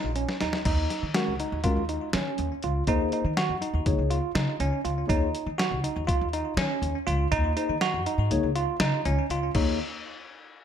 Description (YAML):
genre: progressive instrumental, band music in an uneven meter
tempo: 243 BPM (eighths)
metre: 9/8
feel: straight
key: Eb minor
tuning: A4 = 440 Hz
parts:
  - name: bell-like tine electric piano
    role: arpeggios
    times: 0.0-9.8 s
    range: Db4 to Gb4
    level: -29 LUFS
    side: right 2 dB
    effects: medium stereo tremolo, ping-pong delay
  - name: upright bass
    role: bass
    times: 0.0-9.8 s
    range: Bb1 to Eb3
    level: -29 LUFS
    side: equal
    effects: none
  - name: boom bap sampler-style drum kit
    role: drums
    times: 0.2-9.7 s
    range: crash cymbal, hi-hat, kick drum, snare drum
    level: -29 LUFS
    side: equal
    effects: none
  - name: mellow tine electric piano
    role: accompaniment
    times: 1.1-9.8 s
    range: Ab3 to Db5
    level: -30 LUFS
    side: left 6 dB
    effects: lush chorus
room: moderate plate reverb, RT60 1.0 s, digital ambience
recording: bright 1980s-style digital production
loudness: -24 LUFS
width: side -9 dB against mid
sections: 0.7-9.6 A section; 9.6-10.6 B section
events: drum fill 0.3-0.7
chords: 0.0 Eb5; 0.7 Ebm7; 2.9 Ab7/Eb; 3.9 Db6; 5.1 Eb7(no3); 7.3 Ab7/Eb; 8.3 Db6; 9.6 Eb5